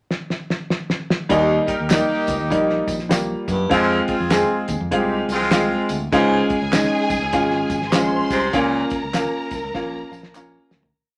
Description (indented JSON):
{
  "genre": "uptempo 1960s-style soul",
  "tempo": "100 BPM",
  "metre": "4/4",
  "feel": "swing 62% on 8ths",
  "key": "Eb mixolydian",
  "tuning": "A4 = 440 Hz",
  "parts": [
    { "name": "cloth-damped thuddy drum kit", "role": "drums", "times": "0.1-10.9 s", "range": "hi-hat, kick drum, snare drum, toms", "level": "-26 LUFS", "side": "equal", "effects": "none" },
    { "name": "warm upright piano", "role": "accompaniment", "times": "1.3-10.9 s", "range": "G3 to Bb5", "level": "-22 LUFS", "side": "equal", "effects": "none" },
    { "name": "raspy baritone saxophone", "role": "riff", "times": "1.3-8.8 s", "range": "Eb2 to C3", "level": "-26 LUFS", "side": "equal", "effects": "none" },
    { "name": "modern bright fingered electric bass", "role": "bass", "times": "1.3-10.9 s", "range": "Ab1 to Gb2", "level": "-31 LUFS", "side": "equal", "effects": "none" },
    { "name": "tambourine and handclaps", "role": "percussion", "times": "1.3-10.8 s", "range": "none", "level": "-33 LUFS", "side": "equal", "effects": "none" },
    { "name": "clear horn section", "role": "second line", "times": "1.7-5.9 s", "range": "Ab3 to Bb4", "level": "-26 LUFS", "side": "equal", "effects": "none" },
    { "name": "warm studio string section", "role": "second line", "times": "6.1-10.9 s", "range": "Ab4 to C6", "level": "-28 LUFS", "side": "equal", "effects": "none" }
  ],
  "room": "wet studio reverb, RT60 0.6 s",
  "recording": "none",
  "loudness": "-20 LUFS",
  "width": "mono",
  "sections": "0.0-1.3 pickup bar; 1.3-10.9 verse",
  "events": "drum fill 0.1-1.3, 9.7-10.9; fade-out 8.5-10.9; upright piano fill 9.7-10.9",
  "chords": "0.0 N.C.; 1.3 Eb; 3.7 Fm; 6.1 Db; 8.5 Bbm",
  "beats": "0.10 0.70 | 1.30 1.90 2.51 3.11 | 3.71 4.32 4.92 5.52 | 6.13 6.73 7.33 7.94 | 8.54 9.14 9.74 10.35"
}